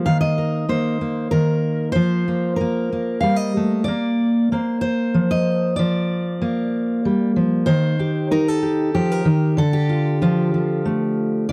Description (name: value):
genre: folk, solo fingerstyle acoustic guitar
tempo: 94 BPM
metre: 3/4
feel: straight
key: unclear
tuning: A4 = 440 Hz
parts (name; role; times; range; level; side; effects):
- fingerpicked steel-string acoustic guitar; solo; 0.0-11.5 s; D3 to F5; -20 LUFS; equal; none
room: little or no reverb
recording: dry, close 1970s-style studio recording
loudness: -20 LUFS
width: mono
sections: 0.0-11.5 A section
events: none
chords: 0.1 Eb5; 2.0 Fsus4; 3.9 Bbsus2; 5.8 Fsus4; 7.7 Eb; 9.6 Dm